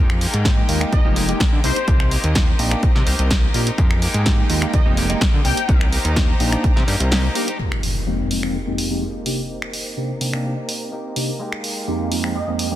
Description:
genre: filtered disco house.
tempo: 126 BPM.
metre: 4/4.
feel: straight.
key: F dorian.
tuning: A4 = 440 Hz.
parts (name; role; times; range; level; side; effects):
bright symphonic violin section; sustained chords; 0.0-12.8 s; Ab3 to Bb5; -31 LUFS; right 1 dB; sidechain pumping, low-pass filter.
direct-recorded clean electric guitar; riff; 0.0-12.8 s; Ab3 to G4; -31 LUFS; left 2 dB; sidechain pumping, low-pass filter.
fat analog bass; bass; 0.0-7.3 s; F1 to D3; -20 LUFS; equal; sidechain pumping, low-pass filter.
punchy analog drum machine; drums; 0.1-12.7 s; finger snaps, hi-hat, snare drum; -24 LUFS; equal; sidechain pumping on hats.
bell-like tine electric piano; accompaniment; 0.4-12.8 s; F2 to G4; -25 LUFS; equal; phaser, sidechain pumping, low-pass filter.
electronic kick drum; drums; 0.5-6.7 s; none; -17 LUFS; equal; none.
analog synth brass; melody; 0.9-5.8, 12.4-12.5 s; C5 to G5; -29 LUFS; left 3 dB; chorus, sidechain pumping, low-pass filter, dub echo.
impact; sound effects; 7.6-9.5 s; none; -27 LUFS; equal; none.
room: light reverb.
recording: dense, heavily limited modern master.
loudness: -17 LUFS.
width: side -13 dB against mid.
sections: 0.0-7.6 A section; 7.6-12.8 B section.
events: kick drops out 7.1-7.6; impact 7.6-9.5; filter sweep 7.6-12.8.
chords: 0.0 Fm11; 1.6 Cm7; 3.8 Fm11; 5.5 Cm7; 7.6 Fm11; 9.3 Cm7; 11.4 Fm11.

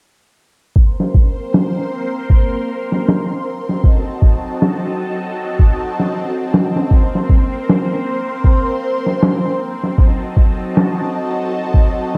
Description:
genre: trip hop.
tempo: 78 BPM.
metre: 4/4.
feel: swing 57% on 16ths.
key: unclear.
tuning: A4 = 440 Hz.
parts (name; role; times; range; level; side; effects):
string machine, cellos; sustained chords; 0.8-12.2 s; Gb4 to C6; -24 LUFS; equal; phaser, ensemble chorus.
boom bap sampler-style drum kit; drums; 0.8-12.2 s; hi-hat, kick drum, snare drum; -16 LUFS; equal; low-pass filter on kick, small room ambience, low-pass filter on hats, low-pass filter on snare, gated reverb.
bowed-like drone; texture; 2.2-12.2 s; C4; -30 LUFS; equal; built-in reverb.
room: light reverb.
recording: bright 1980s-style digital production.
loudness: -16 LUFS.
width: mono.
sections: 0.8-12.2 A section.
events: none.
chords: 0.8 Bbsus2; 3.8 Gbm6; 6.9 Bbsus2; 10.0 Gbm6.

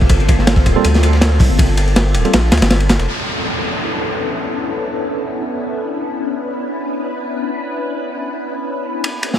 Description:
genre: drum and bass, jungle.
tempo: 161 BPM.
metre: 4/4.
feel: swing 54% on 16ths.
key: B minor.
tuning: A4 = 440 Hz.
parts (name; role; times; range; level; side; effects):
soft string machine; sustained chords; 0.0-9.4 s; Bb3 to B4; -21 LUFS; left 1 dB; phaser, ensemble chorus.
saturated sub bass; bass; 0.0-3.1 s; D1 to D2; -15 LUFS; equal; none.
crunchy breakbeat drum kit; drums; 0.0-3.0, 9.0-9.4 s; hi-hat, kick drum, ride cymbal, snare drum; -16 LUFS; equal; none.
dusty soul sampler-style drum kit; drums; 0.1-3.1 s; hi-hat, snare drum; -28 LUFS; left 2 dB; high-pass filter on hats, high-pass filter on snare, high-pass filter on room, analog delay.
tine electric piano; stabs; 0.8-2.3 s; G3 to A4; -21 LUFS; right 4 dB; medium stereo tremolo, dub echo.
downlifter; sound effects; 3.1-6.1 s; none; -23 LUFS; equal; none.
room: light reverb, small room ambience.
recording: echo-heavy mix.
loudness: -14 LUFS.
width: side -10 dB against mid.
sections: 0.0-3.1 A section; 3.1-9.4 B section.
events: drop 0.0-3.1.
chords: 0.0 Gm11; 3.1 Bm11.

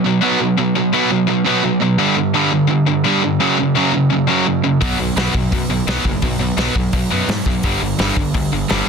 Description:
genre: punk rock.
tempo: 170 BPM.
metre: 4/4.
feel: straight.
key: unclear.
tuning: A4 = 440 Hz.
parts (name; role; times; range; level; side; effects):
sludgy distorted guitar; riff; 0.0-8.9 s; F#2 to B3; -18 LUFS; right 11 dB; overdrive.
tight distorted guitar; riff; 0.0-8.9 s; F#2 to B3; -18 LUFS; left 13 dB; distortion.
fuzz picked electric bass; bass; 4.8-8.8 s; F#1 to G#2; -23 LUFS; left 1 dB; overdrive.
loose indie drum kit; drums; 4.8-8.8 s; hi-hat, kick drum, snare drum; -20 LUFS; left 1 dB; none.
room: light reverb.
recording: dense, heavily limited modern master.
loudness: -14 LUFS.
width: side -5 dB against mid.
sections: 0.0-8.9 A section.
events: none.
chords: 0.0 B5; 2.0 G5; 3.4 F#5; 4.8 B5; 7.6 G5.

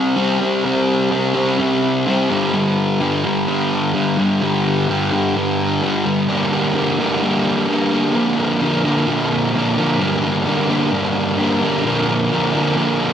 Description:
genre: rock.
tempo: 129 BPM.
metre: 4/4.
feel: straight.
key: G minor.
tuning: A4 = 441 Hz.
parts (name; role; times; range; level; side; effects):
fuzz guitar; solo; 0.0-13.1 s; G2 to D4; -15 LUFS; equal; distortion, slapback echo, tape echo.
room: wet lush hall reverb, RT60 2.6 s.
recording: big arena sound.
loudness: -15 LUFS.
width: side -9 dB against mid.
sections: 0.0-6.3 A section; 6.3-13.1 B section.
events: none.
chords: 0.0 C5; 2.3 G5; 6.3 Gm; 8.2 Bb; 10.0 Gm; 11.8 Bb.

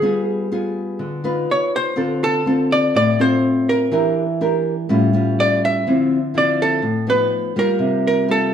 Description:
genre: bossa nova.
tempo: 124 BPM.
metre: 4/4.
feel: straight.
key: unclear.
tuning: A4 = 444 Hz.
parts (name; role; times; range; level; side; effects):
archtop guitar, miked and amplified; melody; 0.0-8.5 s; Ab4 to E5; -19 LUFS; right 1 dB; none.
nylon-string guitar; accompaniment; 0.0-8.5 s; A2 to B4; -18 LUFS; left 1 dB; none.
room: wet studio reverb, RT60 0.9 s.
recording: heard from further back in the room.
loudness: -16 LUFS.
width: side -8 dB against mid.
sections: 0.0-5.9 A section; 5.9-8.5 B section.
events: none.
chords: 0.0 G7b9; 1.5 C#9/D#; 2.0 Dm7; 3.9 Em7b5; 4.9 A7b13; 5.9 Dm9; 7.3 G7alt/F; 7.8 C7sus4.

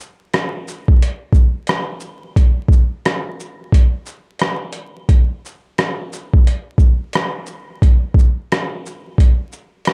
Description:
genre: hip hop.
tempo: 88 BPM.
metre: 4/4.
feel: swing 63% on 16ths.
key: none.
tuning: none.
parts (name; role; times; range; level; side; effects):
boom bap sampler-style drum kit; drums; 0.0-9.9 s; hi-hat, kick drum, rim click, shaker; -16 LUFS; equal; none.
room: little or no reverb.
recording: dark, warm production, vinyl crackle.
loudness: -17 LUFS.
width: mono.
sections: 0.0-9.9 A section.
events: none.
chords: none.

